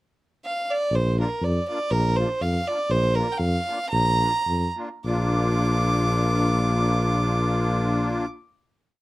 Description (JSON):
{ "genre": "alpine folk, alpine dance band", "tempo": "98-122 BPM", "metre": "2/4", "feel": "straight", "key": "Bb major", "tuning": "A4 = 440 Hz", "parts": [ { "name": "clear fiddle", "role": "melody", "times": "0.5-8.3 s", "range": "Bb4 to D6", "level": "-25 LUFS", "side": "right 1 dB", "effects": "none" }, { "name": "mellow tuba", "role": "bass", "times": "0.9-8.2 s", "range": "Bb1 to F2", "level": "-23 LUFS", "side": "equal", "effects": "none" }, { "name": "musette accordion", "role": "accompaniment", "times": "1.2-8.3 s", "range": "Bb3 to F4", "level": "-28 LUFS", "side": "left 2 dB", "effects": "none" } ], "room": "light reverb", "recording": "dark, warm production", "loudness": "-21 LUFS", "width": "side -18 dB against mid", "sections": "0.0-0.9 pickup bar; 0.9-5.0 A section; 5.0-7.5 final chord", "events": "slowing down 2.9-5.0", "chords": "0.0 N.C.; 0.9 Bb", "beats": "0.42 | 0.92 1.42 | 1.92 2.41 | 2.90 3.40 | 3.91 4.46 | 5.05 5.66 | 6.27 6.88" }